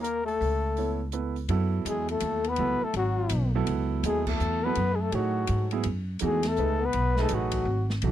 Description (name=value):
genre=modal jazz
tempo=166 BPM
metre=3/4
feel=swing 64% on 8ths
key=F# dorian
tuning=A4 = 441 Hz
part: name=breathy trumpet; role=melody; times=0.0-7.9 s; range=F#4 to B4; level=-29 LUFS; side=left 2 dB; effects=none
part: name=clear trombone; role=second line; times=0.0-7.9 s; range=F#3 to B3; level=-33 LUFS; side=left 11 dB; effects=none
part: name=warm grand piano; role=accompaniment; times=0.0-8.1 s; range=E3 to C#5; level=-32 LUFS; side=right 10 dB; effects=none
part: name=upright bass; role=bass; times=0.0-8.1 s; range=G#1 to A2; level=-28 LUFS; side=equal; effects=none
part: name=open jazz drum kit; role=drums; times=0.0-8.1 s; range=crash cymbal, hi-hat, kick drum, ride cymbal, snare drum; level=-39 LUFS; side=equal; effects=none
room=little or no reverb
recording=dry, close 1970s-style studio recording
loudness=-25 LUFS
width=side -12 dB against mid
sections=0.0-1.5 A section; 1.5-8.1 B section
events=band accent 4.2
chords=0.4 Aadd9/C#; 1.5 F#m11